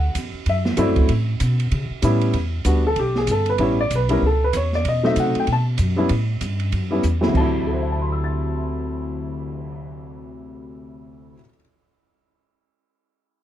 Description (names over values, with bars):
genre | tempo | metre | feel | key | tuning
jazz piano trio | 192 BPM | 4/4 | swing 60% on 8ths | D mixolydian | A4 = 440 Hz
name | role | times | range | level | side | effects
warm upright piano | melody | 0.0-11.6 s | D2 to A6 | -22 LUFS | left 1 dB | none
upright bass | bass | 0.0-11.3 s | G1 to C#3 | -22 LUFS | equal | none
open jazz drum kit | drums | 0.1-9.8 s | crash cymbal, cymbal swell, hi-hat, kick drum, ride cymbal, snare drum | -27 LUFS | right 2 dB | none
room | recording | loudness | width
light reverb | dark, warm production | -18 LUFS | side -11 dB against mid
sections
0.0-2.3 A section; 2.3-7.4 B section; 7.4-9.9 C section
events
drum fill 7.0-7.4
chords
0.0 D9; 1.1 A9; 2.3 Em7; 3.6 A9; 4.8 B7b9; 6.1 A7(no3); 7.4 D9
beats
0.15 0.46 0.78 | 1.09 1.40 1.72 2.03 | 2.34 2.65 2.97 3.28 | 3.59 3.90 4.22 4.53 | 4.84 5.16 5.47 5.78 | 6.10 6.41 6.72 7.04 | 7.35 7.67 7.98 8.29 | 8.61 8.92 9.23 9.55